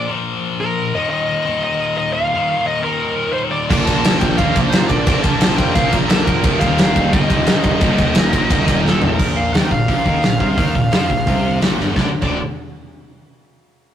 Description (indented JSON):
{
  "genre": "heavy metal",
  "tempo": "175 BPM",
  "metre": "4/4",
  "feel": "straight",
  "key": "unclear",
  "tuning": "A4 = 438 Hz",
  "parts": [
    { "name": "high-gain lead guitar", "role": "melody", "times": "0.0-12.4 s", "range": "A4 to A5", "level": "-21 LUFS", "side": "equal", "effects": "distortion" },
    { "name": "scooped high-gain guitar", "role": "riff", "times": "0.0-12.4 s", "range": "D2 to Bb3", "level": "-22 LUFS", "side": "left 4 dB", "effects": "distortion" },
    { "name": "crunchy overdriven guitar", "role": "riff", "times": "3.7-9.2 s", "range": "Eb2 to Bb4", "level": "-23 LUFS", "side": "right 2 dB", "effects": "none" },
    { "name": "tight distorted guitar", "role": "riff", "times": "3.7-12.4 s", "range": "D2 to Bb3", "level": "-25 LUFS", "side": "right 6 dB", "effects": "distortion" },
    { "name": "fuzz picked electric bass", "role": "bass", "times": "3.7-12.4 s", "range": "D1 to Bb2", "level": "-22 LUFS", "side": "equal", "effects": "overdrive" },
    { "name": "big rock drum kit", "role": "drums", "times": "3.7-12.3 s", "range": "crash cymbal, hi-hat, kick drum, ride cymbal, snare drum, toms", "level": "-16 LUFS", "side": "equal", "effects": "none" }
  ],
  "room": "moderate studio reverb, RT60 0.6 s",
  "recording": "rough rehearsal-room recording, tube saturation",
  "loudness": "-14 LUFS",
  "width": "side -10 dB against mid",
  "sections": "0.0-9.2 A section; 9.2-12.0 B section; 12.0-13.4 C section",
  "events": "drum fill 8.9-9.2, 11.8",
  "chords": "0.0 Bb5; 1.0 Eb5; 3.7 Bb; 6.5 Eb; 9.2 Bb5; 12.0 D5",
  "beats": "0.27 0.61 | 0.95 1.30 1.64 1.99 | 2.33 2.67 3.02 3.36 | 3.70 4.05 4.39 4.73 | 5.08 5.42 5.76 6.11 | 6.45 6.79 7.14 7.48 | 7.82 8.17 8.51 8.86 | 9.20 9.54 9.89 10.23 | 10.58 10.93 11.27 11.62 | 11.96 12.31"
}